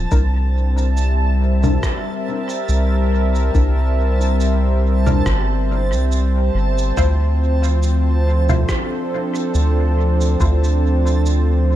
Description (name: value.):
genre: ambient dub.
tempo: 70 BPM.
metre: 4/4.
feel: swing 55% on 16ths.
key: C mixolydian.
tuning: A4 = 440 Hz.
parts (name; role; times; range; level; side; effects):
warm analog pad; sustained chords; 0.0-11.8 s; F3 to E5; -22 LUFS; equal; chorus.
filtered dub chord stab; stabs; 0.0-10.6 s; D4 to C5; -29 LUFS; left 4 dB; phaser, lush chorus, dub echo.
soft dub sub bass; bass; 0.0-11.8 s; G1 to D2; -16 LUFS; equal; none.
backwards swelling texture; texture; 0.0-11.8 s; A5; -32 LUFS; right 2 dB; built-in reverb.
electronic kick drum; drums; 0.1-10.6 s; none; -21 LUFS; equal; none.
electronic shaker, congas and rim click; drums; 0.1-11.4 s; none; -27 LUFS; right 2 dB; dub echo.
room: little or no reverb.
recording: none.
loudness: -15 LUFS.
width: side -13 dB against mid.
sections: 0.0-11.8 A section.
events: none.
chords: 0.1 C7; 7.0 Dm7.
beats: | 0.12 0.97 1.83 2.69 | 3.54 4.40 5.26 6.12 | 6.97 7.83 8.69 9.54 | 10.40 11.26.